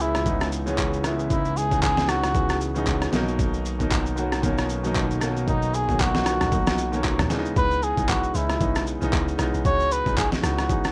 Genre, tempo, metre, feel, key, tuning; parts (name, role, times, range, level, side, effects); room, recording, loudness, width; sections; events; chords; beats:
amapiano; 115 BPM; 4/4; swing 58% on 16ths; C# dorian; A4 = 441 Hz
trumpet with cup mute; melody; 0.0-10.9 s; D#4 to C#5; -28 LUFS; equal; delay
clear grand piano; accompaniment; 0.0-10.9 s; B2 to F#4; -30 LUFS; equal
fat analog bass; bass; 0.0-7.3 s; B1 to C#2; -30 LUFS; equal
boom bap sampler-style drum kit; drums; 0.0-10.9 s; handclaps, kick drum, rim click, shaker, snare drum, toms; -28 LUFS; equal; overdrive
bongos and congas; percussion; 0.2-10.8 s; -38 LUFS; equal
deep log drum bass; bass; 7.6-10.9 s; B1 to C#2; -30 LUFS; equal
little or no reverb; rough home demo mix; -23 LUFS; mono
0.0-10.9 A section
0.0 C#m9; 3.1 Bmaj7; 7.3 C#m9
0.26 0.78 | 1.30 1.82 2.35 2.87 | 3.39 3.91 4.43 4.96 | 5.48 6.00 6.52 7.04 | 7.56 8.09 8.61 9.13 | 9.65 10.17 10.69